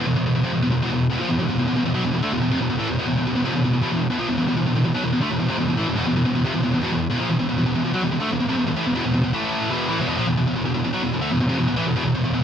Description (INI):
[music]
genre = metal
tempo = 160 BPM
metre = 4/4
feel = straight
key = unclear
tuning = A4 = 440 Hz
[part]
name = scooped high-gain guitar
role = solo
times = 0.0-12.4 s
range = E2 to A3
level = -19 LUFS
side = equal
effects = distortion
[sound]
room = light reverb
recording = dark, warm production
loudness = -19 LUFS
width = side -8 dB against mid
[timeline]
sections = 0.0-10.1 A section; 10.1-12.4 B section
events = none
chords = 0.0 E5; 9.3 A5; 9.7 E5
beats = 0.35 0.73 | 1.10 1.47 1.85 2.22 | 2.60 2.97 3.34 3.72 | 4.09 4.47 4.84 5.21 | 5.59 5.96 6.34 6.71 | 7.09 7.46 7.84 8.21 | 8.59 8.96 9.34 9.71 | 10.08 10.46 10.83 11.21 | 11.58 11.95 12.32